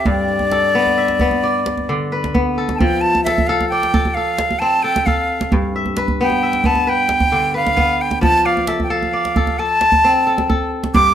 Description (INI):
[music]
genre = west african traditional, West African string and xylophone music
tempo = 88 BPM (dotted quarters)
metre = 12/8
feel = straight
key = F lydian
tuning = A4 = 440 Hz
[part]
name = breathy bright concert flute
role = melody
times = 0.0-11.1 s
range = D5 to D6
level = -16 LUFS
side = equal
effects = none
[part]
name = kora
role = arpeggios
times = 0.0-11.1 s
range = G2 to E5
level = -19 LUFS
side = left 1 dB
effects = none
[part]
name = djembe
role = percussion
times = 0.1-11.0 s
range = none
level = -21 LUFS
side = right 2 dB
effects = none
[sound]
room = moderate small room ambience, RT60 0.5 s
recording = none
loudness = -14 LUFS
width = side -10 dB against mid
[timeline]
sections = 0.0-2.8 A section; 2.8-11.1 B section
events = flute solo 2.8-11.1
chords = 0.1 G; 2.8 F; 5.5 G; 8.2 F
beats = | 0.06 0.74 1.43 2.11 | 2.80 3.48 4.16 4.84 | 5.52 6.20 6.88 7.55 | 8.23 8.91 9.59 10.26 | 10.94